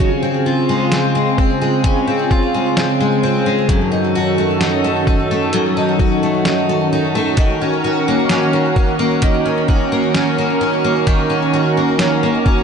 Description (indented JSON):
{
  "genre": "dream pop",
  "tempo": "65 BPM",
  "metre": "4/4",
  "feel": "straight",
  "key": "Db major",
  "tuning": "A4 = 441 Hz",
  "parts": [
    { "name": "warm analog pad", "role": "sustained chords", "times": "0.0-12.6 s", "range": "Db3 to Bb4", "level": "-18 LUFS", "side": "right 3 dB", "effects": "chorus" },
    { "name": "picked twelve-string acoustic guitar", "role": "arpeggios", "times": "0.0-12.6 s", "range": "Gb2 to Gb4", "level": "-16 LUFS", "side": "left 2 dB", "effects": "lush chorus, ping-pong delay" },
    { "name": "detuned 8-bit digital drum machine", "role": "drums", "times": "0.0-12.6 s", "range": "hi-hat, kick drum, snare drum", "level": "-18 LUFS", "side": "equal", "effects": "none" }
  ],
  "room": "moderate concert hall reverb, RT60 2.5 s",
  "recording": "dark, warm production, nothing above 10.5 kHz",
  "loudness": "-13 LUFS",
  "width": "side -6 dB against mid",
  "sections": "0.0-12.6 A section",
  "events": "none",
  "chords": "0.0 Dbmaj7; 7.4 Ebm7",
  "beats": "0.92 1.84 2.76 | 3.69 4.61 5.53 6.46 | 7.38 8.30 9.22 10.15 | 11.07 11.99"
}